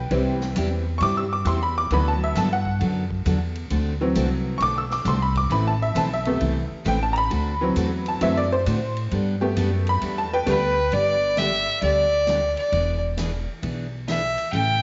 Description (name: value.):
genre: country, western swing.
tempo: 133 BPM.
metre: 4/4.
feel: swing 67% on 8ths.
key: G major.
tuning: A4 = 439 Hz.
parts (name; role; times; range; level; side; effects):
tack piano; accompaniment; 0.0-10.9 s; C3 to E6; -26 LUFS; equal; none.
upright bass; bass; 0.0-14.8 s; E1 to A2; -28 LUFS; equal; none.
picked steel-string acoustic guitar; accompaniment; 0.1-14.8 s; C3 to B4; -31 LUFS; equal; none.
swinging big-band drum kit; drums; 0.1-14.7 s; hi-hat, kick drum, ride cymbal, snare drum; -41 LUFS; equal; none.
rich fiddle; melody; 10.5-14.8 s; B4 to G5; -23 LUFS; equal; tape echo.
room: moderate echo chamber reverb, RT60 1.7 s, studio reverb.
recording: nothing above 7.6 kHz.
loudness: -23 LUFS.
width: mono.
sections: 0.0-10.9 A section; 10.9-14.8 B section.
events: honky-tonk piano solo 0.0-10.9.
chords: 0.1 C; 1.9 D6; 3.7 D7; 5.5 Amadd9; 7.3 D7; 9.1 Gadd9; 10.9 G; 12.7 E7.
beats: | 0.11 0.56 1.00 1.46 | 1.91 2.36 2.81 3.26 | 3.71 4.16 4.61 5.06 | 5.51 5.96 6.41 6.86 | 7.31 7.76 8.21 8.66 | 9.12 9.57 10.02 10.47 | 10.92 11.37 11.82 12.28 | 12.73 13.18 13.63 14.08 | 14.53.